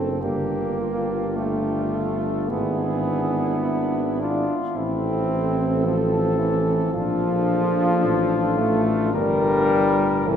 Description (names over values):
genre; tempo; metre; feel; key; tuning
classical, hymn-like piece for brass band; 54 BPM; 4/4; rubato; unclear; A4 = 439 Hz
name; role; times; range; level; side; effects
warm flugelhorn; second line; 0.0-10.4 s; E4 to Bb4; -29 LUFS; right 6 dB; none
bright trombone section; accompaniment; 0.0-10.4 s; C4 to D4; -29 LUFS; left 3 dB; none
clear trombone; accompaniment; 0.0-10.4 s; E3 to D4; -25 LUFS; right 1 dB; none
mellow tuba; bass; 0.0-10.4 s; F#1 to C2; -25 LUFS; equal; none
dark trumpet section; melody; 0.2-10.4 s; E4 to Bb4; -27 LUFS; left 6 dB; none
room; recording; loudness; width
wet cathedral reverb, RT60 4.6 s; recorded in a church or concert hall; -20 LUFS; side -8 dB against mid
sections
0.0-10.4 A section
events
none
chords
0.2 Gm; 2.5 E7/G#; 4.8 Am; 6.9 Bbmaj7; 9.1 Gm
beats
0.22 1.36 | 2.50 3.64 4.75 5.86 | 6.95 8.04 9.14 10.28